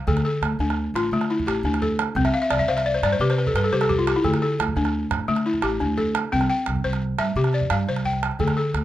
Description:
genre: west african traditional, West African string and xylophone music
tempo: 115 BPM (dotted quarters)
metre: 12/8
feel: straight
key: D dorian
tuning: A4 = 438 Hz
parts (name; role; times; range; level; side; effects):
- balafon; arpeggios; 0.0-8.8 s; D3 to G5; -22 LUFS; left 2 dB; none
- upright bass; bass; 0.1-8.8 s; A1 to D3; -25 LUFS; right 1 dB; none
- calabash; percussion; 0.1-8.8 s; none; -28 LUFS; right 6 dB; none
room: little or no reverb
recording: close, detailed microphones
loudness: -20 LUFS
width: side -13 dB against mid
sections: 0.1-8.8 A section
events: balafon fill 2.2-4.2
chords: 0.1 Dm; 2.2 C5; 4.2 D5; 6.3 C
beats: | 0.07 0.60 1.12 1.64 | 2.16 2.68 3.20 3.72 | 4.24 4.76 5.28 5.80 | 6.32 6.84 7.36 7.88 | 8.40

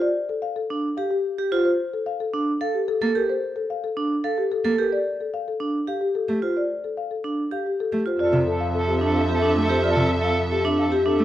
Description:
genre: classical, minimalist pattern music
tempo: 110 BPM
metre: 3/4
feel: straight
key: F major from 8.2 s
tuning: A4 = 441 Hz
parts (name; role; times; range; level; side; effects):
- marimba with medium mallets; melody; 0.0-11.2 s; G4 to F5; -26 LUFS; left 4 dB; none
- vibraphone with hard mallets; arpeggios; 0.0-11.2 s; D4 to A4; -24 LUFS; right 2 dB; none
- rich cello; accompaniment; 3.0-11.2 s; C3 to Bb3; -26 LUFS; right 1 dB; none
- edgy soprano saxophone; second line; 8.2-11.2 s; A4; -27 LUFS; right 2 dB; none
- warm studio violin section; sustained chords; 8.2-11.2 s; A4 to E5; -29 LUFS; left 1 dB; none
- clear double bass; bass; 8.2-11.2 s; F2; -25 LUFS; right 2 dB; none
room: light reverb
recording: worn, warbling old tape, cassette tape, warbly pitch drift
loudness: -21 LUFS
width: side -12 dB against mid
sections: 0.0-8.2 A section; 8.2-11.2 B section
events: none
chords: 0.0 F69; 1.7 Bbmaj13 (rootless); 4.9 F69; 8.2 Fmaj9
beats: | 0.01 0.56 1.11 | 1.65 2.20 2.74 | 3.29 3.83 4.38 | 4.92 5.47 6.01 | 6.56 7.11 7.65 | 8.20 8.74 9.29 | 9.83 10.38 10.92

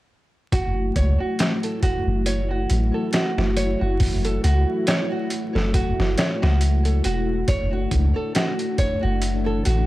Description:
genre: trip hop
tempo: 69 BPM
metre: 4/4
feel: swing 56% on 16ths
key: F# minor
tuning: A4 = 443 Hz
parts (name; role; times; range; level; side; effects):
- string machine, cellos; sustained chords; 0.5-9.9 s; A3 to F#4; -27 LUFS; left 1 dB; ensemble chorus
- nylon-string guitar; arpeggios; 0.5-9.9 s; F#4 to C#5; -27 LUFS; right 2 dB; low-pass filter, digital delay
- soft 808-style bass; bass; 0.5-9.9 s; E1 to C#2; -21 LUFS; equal; none
- trip hop sampler-style drum kit; drums; 0.5-9.9 s; hi-hat, kick drum, snare drum; -24 LUFS; equal; small room ambience
room: light reverb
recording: vinyl crackle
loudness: -19 LUFS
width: side -16 dB against mid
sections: 0.5-9.9 A section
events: none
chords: 0.5 F#m7; 7.5 E7sus4/F#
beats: | 0.53 1.39 2.26 3.13 | 4.00 4.87 5.74 6.61 | 7.48 8.35 9.22

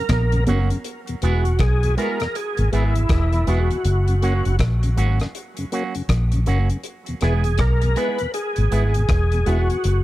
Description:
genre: roots reggae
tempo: 80 BPM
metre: 4/4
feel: swing 62% on 16ths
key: E lydian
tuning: A4 = 441 Hz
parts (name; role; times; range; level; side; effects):
- overdriven tonewheel organ; melody; 0.0-10.0 s; E4 to B4; -25 LUFS; equal; chorus vibrato, slow rotary speaker, dub echo
- mellow tonewheel organ; accompaniment; 0.0-9.8 s; E2 to F#4; -29 LUFS; left 2 dB; overdrive, chorus vibrato, slow rotary speaker
- vintage muted fingered electric bass; bass; 0.1-10.0 s; E1 to B1; -18 LUFS; equal; none
- damped 70s drum kit; drums; 0.1-10.0 s; hi-hat, kick drum, rim click; -25 LUFS; equal; none
- congas; percussion; 0.1-0.7 s; none; -27 LUFS; right 3 dB; none
- electric guitar with an envelope filter; accompaniment; 0.5-9.7 s; F#3 to G#4; -30 LUFS; right 6 dB; dub echo
room: small room ambience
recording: dark, warm production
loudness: -18 LUFS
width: side -16 dB against mid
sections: 0.8-10.0 A section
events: none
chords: 0.0 F#; 0.8 E; 3.8 F#; 6.8 E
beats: 0.10 | 0.84 1.59 2.34 3.09 | 3.84 4.59 5.34 6.09 | 6.84 7.59 8.34 9.09 | 9.84

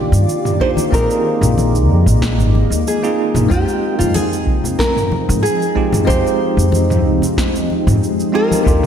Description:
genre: sunset chillout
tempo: 93 BPM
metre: 4/4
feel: straight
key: F dorian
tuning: A4 = 440 Hz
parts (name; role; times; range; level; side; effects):
- nylon-string guitar; melody; 0.0-8.9 s; F4 to C5; -20 LUFS; right 1 dB; analog delay
- bell-like tine electric piano; accompaniment; 0.0-8.9 s; Ab3 to G5; -20 LUFS; equal; fast stereo tremolo, auto-pan, diffuse ambient delay
- shimmering ambient pad; sustained chords; 0.0-8.9 s; Eb3 to D5; -22 LUFS; equal; chorus, built-in reverb, phaser
- upright bass; bass; 0.0-8.8 s; Ab1 to Ab2; -16 LUFS; equal; none
- deep house drum kit; drums; 0.1-8.9 s; cabasa, snare drum, toms; -23 LUFS; equal; overdrive
- electronic kick drum; drums; 0.6-8.8 s; none; -19 LUFS; equal; none
- congas; percussion; 0.8-8.6 s; none; -26 LUFS; left 3 dB; none
room: moderate lush hall reverb, RT60 1.8 s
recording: dreamy mix soaked in reverb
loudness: -13 LUFS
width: side -8 dB against mid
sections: 0.0-8.9 A section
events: none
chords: 0.0 Ebmaj9; 0.9 Bb7sus4; 3.5 Fm7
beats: 0.28 | 0.92 1.57 2.21 2.86 | 3.50 4.15 4.79 5.44 | 6.08 6.73 7.38 8.02 | 8.67

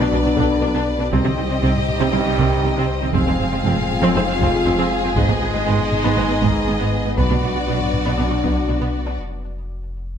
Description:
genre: cinematic, hybrid orchestral and electronic film score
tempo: 119 BPM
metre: 4/4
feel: straight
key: unclear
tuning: A4 = 441 Hz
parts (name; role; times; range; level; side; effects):
- warm symphonic violin section; melody; 0.0-9.2 s; D5 to F5; -27 LUFS; left 3 dB; none
- warm symphonic violin section; second line; 0.0-9.2 s; F#4 to Cb5; -27 LUFS; left 2 dB; none
- warm symphonic viola section; accompaniment; 0.0-9.1 s; Cb4 to D4; -27 LUFS; right 1 dB; none
- clear trombone section; sustained chords; 0.0-9.2 s; F2 to Ab3; -28 LUFS; right 3 dB; none
- mellow French horn section; sustained chords; 0.0-9.2 s; B3 to F4; -25 LUFS; left 4 dB; none
- warm analog pad; sustained chords; 0.0-9.2 s; F#3 to Eb5; -30 LUFS; equal; none
- tight sequenced synth; arpeggios; 0.0-9.1 s; C3 to F#4; -30 LUFS; right 2 dB; none
- punchy sub bass; bass; 0.0-10.2 s; F1 to C2; -27 LUFS; equal; none
- warm symphonic cello section; bass; 0.0-9.1 s; F2 to C3; -23 LUFS; right 2 dB; none
- dark grand piano; texture; 0.0-9.2 s; Eb4 to D6; -34 LUFS; left 2 dB; none
- warm symphonic double bass section; bass; 0.1-8.7 s; F1 to C2; -24 LUFS; right 3 dB; none
- taiko ensemble; drums; 0.4-9.2 s; none; -27 LUFS; equal; none
room: wet recital hall reverb, RT60 1.5 s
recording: none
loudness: -16 LUFS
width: side -8 dB against mid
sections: 0.0-10.2 A section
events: break 9.2-10.2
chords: 0.0 Bm; 1.1 Cm; 3.1 Fm; 5.2 Abm; 7.2 Bm; 9.2 N.C.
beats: 0.12 0.62 | 1.13 1.63 2.13 2.64 | 3.14 3.65 4.15 4.66 | 5.16 5.66 6.17 6.67 | 7.18 7.68 8.18 8.69 | 9.19 9.70

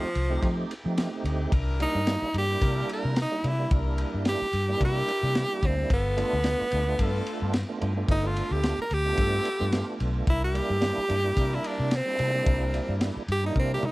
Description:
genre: straight-eighth soul blues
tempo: 110 BPM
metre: 4/4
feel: swing 55% on 16ths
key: C mixolydian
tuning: A4 = 440 Hz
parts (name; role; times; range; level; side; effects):
- bright tenor saxophone; melody; 0.0-13.9 s; F3 to Bb4; -28 LUFS; equal; none
- tonewheel organ; accompaniment; 0.0-13.9 s; G3 to G4; -33 LUFS; right 3 dB; chorus vibrato, slow rotary speaker
- vintage muted fingered electric bass; bass; 0.0-13.8 s; G1 to F3; -28 LUFS; equal; none
- crunchy breakbeat drum kit; drums; 0.2-13.9 s; kick drum, ride cymbal, snare drum, toms; -30 LUFS; equal; none
- bright horn section; sustained chords; 1.5-13.9 s; B3 to Bb4; -38 LUFS; left 4 dB; none
room: light reverb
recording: none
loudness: -24 LUFS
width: side -20 dB against mid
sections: 0.0-13.9 A section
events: tenor saxophone solo 0.0-13.9; drum fill 13.6-13.9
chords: 0.0 F9; 1.5 C9; 5.9 G9; 10.3 C9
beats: 0.43 0.98 | 1.52 2.07 2.62 3.17 | 3.71 4.26 4.81 5.35 | 5.90 6.45 6.99 7.54 | 8.09 8.63 9.18 9.73 | 10.28 10.82 11.37 11.92 | 12.47 13.01 13.56

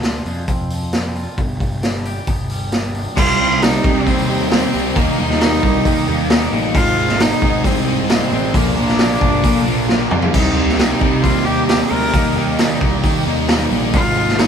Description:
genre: quiet-loud alternative rock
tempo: 134 BPM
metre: 4/4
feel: straight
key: C minor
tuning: A4 = 441 Hz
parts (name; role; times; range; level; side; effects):
- twangy electric guitar; arpeggios; 0.0-3.2 s; G2 to Ab4; -32 LUFS; left 1 dB; none
- fuzz picked electric bass; bass; 0.0-14.5 s; G1 to Eb3; -22 LUFS; equal; overdrive
- raw garage drum kit; drums; 0.0-14.5 s; crash cymbal, hi-hat, kick drum, snare drum, toms; -18 LUFS; equal; none
- clear cello; melody; 3.2-14.5 s; Bb3 to Bb4; -20 LUFS; left 1 dB; none
- clear studio string section; sustained chords; 3.2-14.5 s; D4 to Ab5; -32 LUFS; left 1 dB; none
- crunchy overdriven guitar; riff; 3.2-14.5 s; Ab2 to Eb4; -24 LUFS; left 6 dB; phaser
- distorted electric guitar; riff; 3.2-14.5 s; Ab2 to Eb4; -23 LUFS; equal; distortion
- fuzz guitar; riff; 3.2-14.5 s; Ab2 to Eb4; -22 LUFS; right 8 dB; distortion
room: light reverb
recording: band playing live in one room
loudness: -14 LUFS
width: side -7 dB against mid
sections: 0.0-3.2 A section; 3.2-14.5 B section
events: drum fill 9.9-10.3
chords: 0.0 Fm; 1.4 G; 3.2 Cm; 5.0 Eb; 6.7 Ab; 8.5 Bb; 10.3 Cm; 12.1 Eb; 13.9 Ab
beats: 0.04 0.48 0.93 | 1.38 1.83 2.28 2.73 | 3.18 3.62 4.07 4.52 | 4.96 5.41 5.85 6.30 | 6.75 7.20 7.64 8.09 | 8.54 8.99 9.44 9.89 | 10.34 10.79 11.24 11.69 | 12.14 12.59 13.04 13.49 | 13.94 14.39

